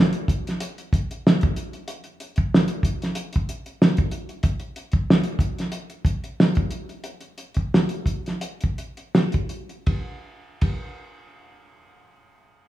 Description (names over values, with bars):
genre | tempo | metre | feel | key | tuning
R&B | 80-94 BPM | 4/4 | swing 55% on 16ths | none | none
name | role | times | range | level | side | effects
cloth-damped thuddy drum kit | drums | 0.1-10.8 s | hi-hat, kick drum, ride cymbal, snare drum | -21 LUFS | equal | none
room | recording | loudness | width
moderate plate reverb, RT60 1.4 s | small room ambience | -21 LUFS | side -14 dB against mid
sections
0.0-9.9 A section; 9.9-12.7 B section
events
slowing down 4.4-9.9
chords
none